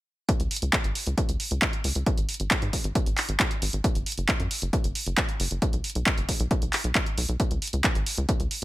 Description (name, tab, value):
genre	uplifting trance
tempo	135 BPM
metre	4/4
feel	straight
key	unclear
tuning	A4 = 440 Hz
part	electronic kick drum	drums	0.3-8.4 s	none	-26 LUFS	equal	none
part	punchy analog drum machine	drums	0.3-8.6 s	handclaps, hi-hat	-27 LUFS	equal	sidechain pumping on hats
part	tight sequencer bass	bass	0.4-8.6 s	F#1 to G#2	-28 LUFS	equal	sidechain pumping
room	little or no reverb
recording	none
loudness	-24 LUFS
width	side -17 dB against mid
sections	0.3-8.6 A section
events	none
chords	none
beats	| 0.29 0.73 1.18 1.62 | 2.06 2.51 2.95 3.40 | 3.84 4.29 4.73 5.18 | 5.62 6.07 6.51 6.95 | 7.40 7.84 8.29